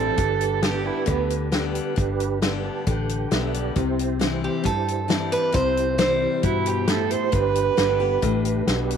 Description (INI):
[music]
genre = honky-tonk and classic country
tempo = 134 BPM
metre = 4/4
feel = straight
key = C major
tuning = A4 = 438 Hz
[part]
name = dark fiddle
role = second line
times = 0.0-1.3, 6.4-8.6 s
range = B3 to C5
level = -24 LUFS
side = right 9 dB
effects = none
[part]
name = mellow tonewheel organ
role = accompaniment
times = 0.0-9.0 s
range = D4 to A5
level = -30 LUFS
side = right 10 dB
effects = chorus vibrato, slow rotary speaker
[part]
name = picked steel-string acoustic guitar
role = accompaniment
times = 0.0-9.0 s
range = G2 to G4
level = -27 LUFS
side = left 12 dB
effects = none
[part]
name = vintage muted fingered electric bass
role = bass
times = 0.0-9.0 s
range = G1 to G2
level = -27 LUFS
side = left 1 dB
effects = none
[part]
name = natural country drum kit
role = drums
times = 0.2-9.0 s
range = hi-hat, kick drum, snare drum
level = -26 LUFS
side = left 1 dB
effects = none
[part]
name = picked acoustic archtop guitar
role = melody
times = 4.4-6.4 s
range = G4 to C5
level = -24 LUFS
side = right 1 dB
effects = none
[sound]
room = wet spring reverb, RT60 1.7 s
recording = 1960s-style stereo with parts hard left and right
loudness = -20 LUFS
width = side -7 dB against mid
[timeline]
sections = 0.0-9.0 A section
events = tonewheel organ fill 2.4-3.8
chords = 0.2 G; 3.8 C; 7.3 G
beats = | 0.18 0.63 1.08 1.53 | 1.97 2.42 2.87 3.31 | 3.76 4.21 4.65 5.10 | 5.55 5.99 6.44 6.89 | 7.33 7.78 8.22 8.67